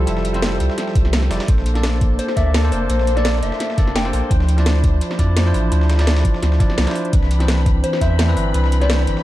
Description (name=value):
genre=liquid drum and bass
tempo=170 BPM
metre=4/4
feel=swing 54% on 16ths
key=unclear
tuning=A4 = 440 Hz
part: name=bell-like tine electric piano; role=accompaniment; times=0.0-9.2 s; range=E3 to D5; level=-24 LUFS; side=equal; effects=digital delay
part: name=dark symphonic string section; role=sustained chords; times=0.0-9.2 s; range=E3 to B5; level=-27 LUFS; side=equal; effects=none
part: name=warm sub bass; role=bass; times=0.0-9.2 s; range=D1 to F2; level=-17 LUFS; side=equal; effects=none
part: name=drum and bass drum kit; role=drums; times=0.1-9.1 s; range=hi-hat, snare drum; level=-24 LUFS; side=equal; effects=none
part: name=dusty soul sampler-style drum kit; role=drums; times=0.1-9.2 s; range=hi-hat, snare drum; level=-32 LUFS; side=equal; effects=overdrive, high-pass filter on hats, high-pass filter on snare, high-pass filter on room
part: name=electronic kick drum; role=drums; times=1.0-8.1 s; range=none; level=-17 LUFS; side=equal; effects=none
part: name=soft struck synth lead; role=melody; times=2.2-4.2, 7.8-9.0 s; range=C5 to G5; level=-24 LUFS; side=left 2 dB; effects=chorus, cassette tape, digital delay
room=light reverb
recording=dark, warm production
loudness=-15 LUFS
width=side -15 dB against mid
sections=0.0-9.2 A section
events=none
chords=0.0 Fmaj9; 1.5 Bbmaj9; 4.3 Dm9; 7.1 Cmaj9